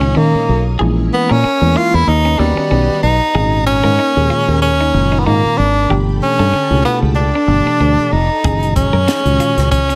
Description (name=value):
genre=electric jazz fusion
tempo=94 BPM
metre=4/4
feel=swing 55% on 16ths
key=unclear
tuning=A4 = 439 Hz
part: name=clear tenor saxophone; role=melody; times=0.0-10.0 s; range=G3 to F4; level=-17 LUFS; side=equal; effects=none
part: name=mellow tine electric piano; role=accompaniment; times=0.0-9.8 s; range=Bb2 to Ab4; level=-22 LUFS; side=equal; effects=none
part: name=string machine, full ensemble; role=sustained chords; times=0.0-10.0 s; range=Bb3 to Eb6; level=-32 LUFS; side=equal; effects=ensemble chorus
part: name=clean electric guitar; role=stabs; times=0.0-10.0 s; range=D3 to Bb4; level=-26 LUFS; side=equal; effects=lush chorus
part: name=fingered electric bass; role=bass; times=0.0-10.0 s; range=F1 to Eb3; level=-17 LUFS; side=equal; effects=none
part: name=crisp fusion drum kit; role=drums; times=8.4-10.0 s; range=hi-hat, kick drum, snare drum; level=-22 LUFS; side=equal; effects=none
room=little or no reverb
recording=none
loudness=-14 LUFS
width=mono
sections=0.0-10.0 A section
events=none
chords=0.0 Ebsus2; 0.8 Bbm7b5; 2.1 Eb7alt; 3.4 Abm9; 5.9 G9; 8.4 Gb69